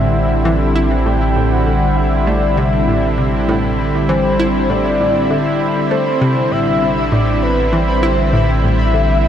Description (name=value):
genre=ambient, sequencer-driven space music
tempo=99 BPM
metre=4/4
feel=straight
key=A minor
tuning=A4 = 441 Hz
part: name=soft octave-layered synth lead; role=melody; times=0.0-9.3 s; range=B4 to G5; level=-19 LUFS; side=left 1 dB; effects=chorus, phaser, shimmer reverb, tape echo
part: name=lush unison pad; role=sustained chords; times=0.0-9.3 s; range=D3 to E4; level=-17 LUFS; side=equal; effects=chorus
part: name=analog pluck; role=riff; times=0.0-9.2 s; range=A2 to E4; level=-20 LUFS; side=equal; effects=chorus, tape echo
part: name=round analog bass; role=bass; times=0.0-9.3 s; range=A1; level=-19 LUFS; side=equal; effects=none
part: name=pulsing gated texture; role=texture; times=0.0-9.3 s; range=B5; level=-28 LUFS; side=right 1 dB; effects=chorus, built-in reverb, shimmer reverb
room=wet cathedral reverb, RT60 5.0 s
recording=in a vast, echoing space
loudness=-13 LUFS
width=side -9 dB against mid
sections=0.0-9.3 A section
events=none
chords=0.0 Am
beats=0.45 | 1.06 1.67 2.27 2.88 | 3.48 4.09 4.70 5.30 | 5.91 6.51 7.12 7.73 | 8.33 8.94